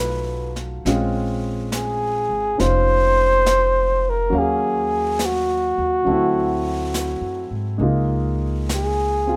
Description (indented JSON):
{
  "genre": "jazz ballad",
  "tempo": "69 BPM",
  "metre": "4/4",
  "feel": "swing 66% on 8ths",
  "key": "unclear",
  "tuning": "A4 = 440 Hz",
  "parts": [
    { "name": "breathy flugelhorn", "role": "melody", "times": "0.0-9.4 s", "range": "Gb4 to C5", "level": "-22 LUFS", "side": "equal", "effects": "none" },
    { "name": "warm upright piano", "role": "accompaniment", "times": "0.0-9.4 s", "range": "F#3 to F5", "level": "-28 LUFS", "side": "equal", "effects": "none" },
    { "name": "upright bass", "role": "bass", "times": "0.0-9.4 s", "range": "F1 to Ab2", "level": "-27 LUFS", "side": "equal", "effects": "none" },
    { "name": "jazz brush drum kit", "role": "drums", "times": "0.6-9.4 s", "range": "brushed snare drum, hi-hat, snare drum", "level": "-33 LUFS", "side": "equal", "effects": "none" }
  ],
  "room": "little or no reverb",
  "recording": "none",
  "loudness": "-20 LUFS",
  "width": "mono",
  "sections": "0.0-9.4 A section",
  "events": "none",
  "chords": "0.0 B7#11; 0.8 Bbm9; 4.3 Ebm9; 6.1 D9; 7.8 Db69"
}